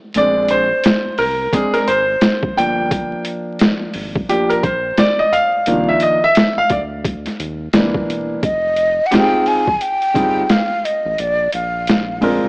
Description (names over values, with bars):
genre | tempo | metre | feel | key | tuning
hip hop, jazz-hop | 87 BPM | 4/4 | swing 60% on 16ths | F dorian | A4 = 440 Hz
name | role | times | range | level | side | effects
boom bap sampler-style drum kit | drums | 0.1-12.4 s | hi-hat, kick drum, snare drum | -17 LUFS | equal | overdrive
warm concert grand piano | accompaniment | 0.2-12.5 s | Eb3 to G5 | -15 LUFS | equal | none
round analog bass | bass | 0.2-12.5 s | E1 to Eb2 | -28 LUFS | equal | none
breathy mellow silver concert flute | melody | 8.4-12.2 s | D5 to Ab5 | -16 LUFS | equal | none
room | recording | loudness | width
moderate plate reverb, RT60 2.0 s | vinyl crackle, AM radio sound | -14 LUFS | side -29 dB against mid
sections
0.0-8.4 A section; 8.4-12.5 B section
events
grand piano solo 0.0-8.4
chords
0.2 Bb9; 2.6 Gm7; 5.7 Cm11; 7.7 C7; 8.4 Fm9; 11.2 Bb9